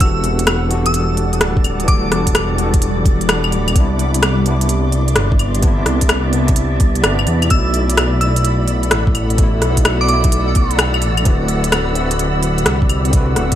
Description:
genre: future garage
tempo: 128 BPM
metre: 4/4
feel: swing 66% on 16ths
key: E minor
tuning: A4 = 440 Hz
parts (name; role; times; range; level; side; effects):
- glassy synth bell; melody; 0.0-2.6, 7.5-10.8 s; D6 to E6; -23 LUFS; right 1 dB; chorus, phaser, vintage 12-bit sampler grit, digital delay
- overdriven tine electric piano; accompaniment; 0.0-13.6 s; B2 to B4; -22 LUFS; left 1 dB; fast tremolo, sidechain pumping, dub echo
- granular cloud pad; sustained chords; 0.0-13.6 s; G3 to E6; -24 LUFS; equal; built-in reverb, sidechain pumping
- dark detuned saw bass; bass; 0.0-13.6 s; D1 to E2; -17 LUFS; equal; sidechain pumping
- electronic kick drum; drums; 0.0-13.6 s; none; -14 LUFS; equal; overdrive, studio reverb
- organic electronic drum kit; drums; 0.0-13.6 s; claves, hi-hat, rim click; -18 LUFS; equal; overdrive, studio reverb
- wind-like tuned noise texture; texture; 0.7-13.6 s; D5; -27 LUFS; right 2 dB; built-in reverb
room: light reverb, digital ambience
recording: vinyl crackle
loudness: -13 LUFS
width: side -11 dB against mid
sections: 0.0-13.6 A section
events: none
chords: 0.0 Em11; 3.8 Cmaj9; 7.5 B7sus4; 11.3 D13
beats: | 0.01 0.48 0.94 1.41 | 1.88 2.35 2.82 3.29 | 3.76 4.23 4.70 5.16 | 5.63 6.10 6.57 7.04 | 7.51 7.98 8.45 8.91 | 9.38 9.85 10.32 10.79 | 11.26 11.73 12.20 12.66 | 13.13

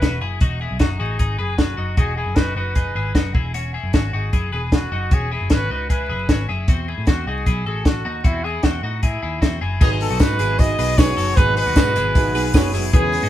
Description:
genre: jangly indie pop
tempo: 153 BPM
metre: 4/4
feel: straight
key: unclear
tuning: A4 = 440 Hz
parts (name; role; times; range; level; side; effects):
- warm trumpet; melody; 0.0-13.3 s; E4 to D#5; -24 LUFS; equal; none
- twelve-string electric guitar; arpeggios; 0.0-13.3 s; B3 to B4; -27 LUFS; left 4 dB; spring reverb
- vintage muted picked electric bass; bass; 0.0-13.3 s; E1 to A2; -24 LUFS; equal; none
- compact cocktail drum kit; drums; 0.0-13.2 s; crash cymbal, hi-hat, kick drum, snare drum; -17 LUFS; equal; none
- fingerpicked plugged-in steel-string acoustic guitar; accompaniment; 9.8-13.3 s; G#2 to B4; -28 LUFS; right 4 dB; none
- warm upright piano; accompaniment; 9.8-13.3 s; C#4 to C#5; -28 LUFS; right 4 dB; none
- lush unison pad; sustained chords; 9.8-13.3 s; B2 to F#4; -32 LUFS; left 2 dB; none
- tambourine; percussion; 9.8-13.2 s; none; -38 LUFS; right 5 dB; none
room: light reverb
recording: band playing live in one room, vinyl crackle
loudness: -17 LUFS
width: side -12 dB against mid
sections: 0.0-9.8 A section; 9.8-13.3 B section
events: none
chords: 0.0 Eadd9; 3.4 C#m/E; 6.7 Am; 9.8 G#m7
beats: 0.02 | 0.41 0.81 1.20 1.59 | 1.98 2.37 2.76 3.16 | 3.55 3.94 4.33 4.72 | 5.12 5.51 5.90 6.29 | 6.68 7.07 7.46 7.86 | 8.25 8.64 9.03 9.42 | 9.81 10.20 10.59 10.98 | 11.37 11.76 12.15 12.54 | 12.93

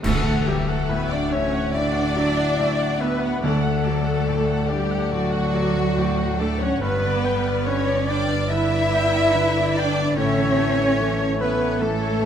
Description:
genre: cinematic, emotional film score for orchestra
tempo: 71 BPM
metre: 4/4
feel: rubato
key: D major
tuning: A4 = 440 Hz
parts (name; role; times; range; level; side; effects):
- rich studio violin section; melody; 0.0-12.3 s; F#4 to E5; -31 LUFS; left 4 dB; none
- mellow silver concert flute; second line; 0.0-12.3 s; F#4 to E5; -29 LUFS; left 1 dB; none
- warm studio violin section; second line; 0.0-12.3 s; F#4 to E5; -31 LUFS; equal; none
- bright baby grand piano; accompaniment; 0.0-12.3 s; D2 to D4; -30 LUFS; equal; none
- warm studio viola section; accompaniment; 0.0-12.3 s; A4 to G5; -31 LUFS; left 3 dB; none
- concert harp; arpeggios; 0.0-12.3 s; G2 to G5; -28 LUFS; left 6 dB; none
- dark studio double bass section; bass; 0.0-12.3 s; G1 to D2; -28 LUFS; right 3 dB; none
- rich studio cello section; bass; 0.0-12.3 s; F#3 to E4; -25 LUFS; right 4 dB; none
- clash cymbals and concert bass drum; percussion; 0.0-1.7 s; none; -28 LUFS; right 1 dB; none
- timpani; percussion; 0.0-4.7 s; D3; -29 LUFS; right 4 dB; none
- dark clarinet; second line; 0.1-12.3 s; F#4 to E5; -31 LUFS; equal; none
- mellow French horn section; sustained chords; 0.1-12.3 s; F#4 to E5; -30 LUFS; left 5 dB; none
room: moderate scoring stage reverb, RT60 1.9 s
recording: none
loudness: -19 LUFS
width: side -8 dB against mid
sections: 0.0-12.3 A section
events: band accent 0.0-0.9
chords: 0.0 Dadd9; 3.4 D; 6.8 G; 10.2 A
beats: | 0.04 0.89 1.74 2.58 | 3.44 4.28 5.12 5.97 | 6.82 7.66 8.50 9.34 | 10.17 10.99 11.81

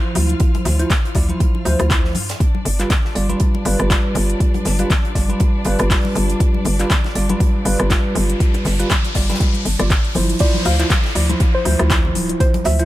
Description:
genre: deep house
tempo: 120 BPM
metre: 4/4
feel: swing 56% on 16ths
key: D dorian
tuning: A4 = 440 Hz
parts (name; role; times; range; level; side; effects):
- bell-like tine electric piano; stabs; 0.0-12.8 s; F3 to D5; -22 LUFS; right 1 dB; phaser, sidechain pumping, ping-pong delay
- bright studio violin section; texture; 0.0-10.4 s; D4 to F6; -32 LUFS; left 2 dB; sidechain pumping
- hollow knocking FM bass; bass; 0.2-12.8 s; D1 to G2; -19 LUFS; equal; tube saturation, sidechain pumping
- crisp fusion drum kit; drums; 0.2-12.8 s; hi-hat, snare drum; -32 LUFS; right 3 dB; sidechain pumping on hats, high-pass filter on hats, high-pass filter on snare, high-pass filter on room
- deep house drum kit; drums; 0.2-12.8 s; crash cymbal, handclaps, hi-hat, rim click; -24 LUFS; left 1 dB; none
- congas; percussion; 0.2-12.6 s; none; -27 LUFS; left 6 dB; none
- electronic kick drum; drums; 0.4-12.5 s; none; -16 LUFS; equal; none
- riser and downlifter; sound effects; 7.3-12.8 s; none; -27 LUFS; equal; none
- soft round pluck; melody; 10.4-12.8 s; C5 to F5; -24 LUFS; equal; chorus, ping-pong delay
room: little or no reverb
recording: none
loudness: -15 LUFS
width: side -15 dB against mid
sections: 0.0-10.4 A section; 10.4-12.8 B section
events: riser 7.3-10.4; drop 10.4-12.8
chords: 0.0 Dm9; 2.2 G7; 10.4 Dm9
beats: | 0.40 0.90 1.40 1.90 | 2.40 2.90 3.40 3.90 | 4.40 4.90 5.40 5.90 | 6.40 6.90 7.40 7.90 | 8.40 8.90 9.40 9.90 | 10.40 10.90 11.40 11.90 | 12.40

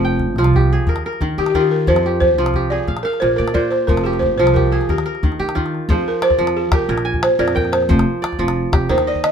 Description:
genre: west african traditional, West African string and xylophone music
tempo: 120 BPM (dotted quarters)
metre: 12/8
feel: straight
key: F dorian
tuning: A4 = 438 Hz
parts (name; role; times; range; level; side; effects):
- balafon; melody; 0.0-9.3 s; G4 to Eb5; -18 LUFS; equal; none
- kora; arpeggios; 0.0-9.3 s; Bb2 to Ab5; -20 LUFS; right 2 dB; none
- upright bass; bass; 0.0-9.3 s; F1 to Eb3; -20 LUFS; equal; none
- calabash; percussion; 0.2-9.3 s; none; -20 LUFS; left 2 dB; none
room: light reverb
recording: minimal, uncompressed stereo recording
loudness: -14 LUFS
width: side -7 dB against mid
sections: 0.0-5.9 A section; 5.9-9.3 B section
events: balafon solo 5.9-9.3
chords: 0.0 Fm; 0.9 Eb; 1.9 Fm; 2.9 Bb; 3.9 Fm; 4.9 Eb; 5.9 F5; 6.9 Bb5; 7.9 F5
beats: 0.38 0.88 1.38 | 1.88 2.38 2.88 3.39 | 3.89 4.39 4.89 5.39 | 5.89 6.39 6.89 7.39 | 7.89 8.39 8.89

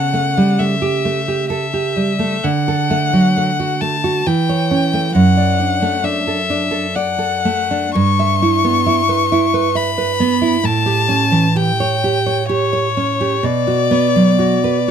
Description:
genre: romantic duo for violin and classical guitar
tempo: 66 BPM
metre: 3/4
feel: uneven beats, rubato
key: D major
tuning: A4 = 440 Hz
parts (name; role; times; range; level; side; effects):
- clear violin; melody; 0.0-14.9 s; C#5 to C#6; -18 LUFS; left 7 dB; none
- nylon-string guitar; accompaniment; 0.0-14.9 s; F#2 to E5; -15 LUFS; right 3 dB; none
room: light reverb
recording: close, detailed microphones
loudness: -14 LUFS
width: side -8 dB against mid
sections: 0.0-14.9 A section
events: none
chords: 0.0 A7/C#; 2.5 D; 4.3 A7/E; 5.2 D/F#; 8.0 Em/G; 10.7 A7; 13.4 Bm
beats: 0.60 1.52 | 2.46 3.37 4.27 | 5.16 6.05 6.95 | 7.96 8.87 9.77 | 10.65 11.57 12.51 | 13.44 14.41

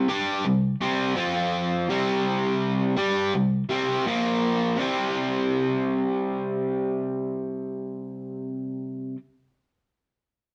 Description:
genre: rock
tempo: 83 BPM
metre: 4/4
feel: straight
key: unclear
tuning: A4 = 440 Hz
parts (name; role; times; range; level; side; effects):
- overdriven semi-hollow guitar; solo; 0.0-9.2 s; Bb2 to G4; -26 LUFS; equal; none
room: moderate studio reverb, RT60 0.7 s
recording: band playing live in one room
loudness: -26 LUFS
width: mono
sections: 0.0-4.8 A section; 4.8-7.7 B section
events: none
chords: 0.0 C5; 1.2 F5; 1.9 C5; 4.1 Bb5; 4.8 C5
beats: 0.46 1.18 | 1.90 2.62 3.34 4.06 | 4.78 5.50 6.22 6.94

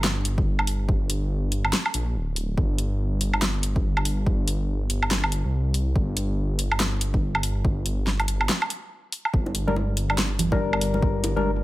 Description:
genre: deep dubstep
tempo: 142 BPM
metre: 4/4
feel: swing 60% on 16ths, half-time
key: G minor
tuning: A4 = 440 Hz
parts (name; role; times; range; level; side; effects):
- dark detuned saw bass; bass; 0.0-11.6 s; D1 to C2; -25 LUFS; equal; none
- deep house drum kit; drums; 0.0-11.3 s; handclaps, hi-hat, snare drum, woodblock; -25 LUFS; equal; studio reverb
- electronic kick drum; drums; 0.4-11.1 s; none; -25 LUFS; equal; studio reverb
- bongos and congas; percussion; 9.5-11.4 s; none; -30 LUFS; right 2 dB; dub echo
- percussive organ stab; stabs; 9.7-11.5 s; G3 to Bb4; -26 LUFS; left 4 dB; chorus, dub echo
room: light reverb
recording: none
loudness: -22 LUFS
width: side -17 dB against mid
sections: 0.0-11.6 A section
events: break 8.5-9.3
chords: 0.0 Gm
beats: 0.04 0.46 | 0.89 1.31 1.73 2.15 | 2.58 3.00 3.42 3.84 | 4.27 4.69 5.11 5.53 | 5.96 6.38 6.80 7.22 | 7.65 8.07 8.49 8.91 | 9.34 9.76 10.18 10.60 | 11.03 11.45

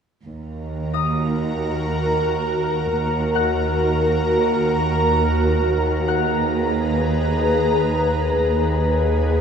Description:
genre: cinematic, suspense film score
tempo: 88 BPM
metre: 4/4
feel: straight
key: Eb minor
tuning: A4 = 440 Hz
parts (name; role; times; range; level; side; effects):
- ethereal airy pad; sustained chords; 1.2-9.4 s; Gb4 to Bb5; -20 LUFS; left 1 dB; ensemble chorus, built-in reverb
- warm chamber double bass section; bass; 0.2-9.4 s; Eb2; -24 LUFS; right 1 dB; none
- warm studio cello section; bass; 0.2-9.4 s; Eb2; -24 LUFS; right 2 dB; none
- concert harp; texture; 0.9-9.4 s; Eb5 to Gb6; -27 LUFS; left 8 dB; none
room: moderate scoring stage reverb, RT60 1.6 s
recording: dark, warm production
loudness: -18 LUFS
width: side -7 dB against mid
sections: 0.2-9.4 A section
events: none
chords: 0.2 Ebm; 5.7 Abmadd9/Eb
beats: | 0.25 0.94 1.63 2.32 | 3.01 3.69 4.37 5.05 | 5.73 6.41 7.09 7.77 | 8.45 9.14

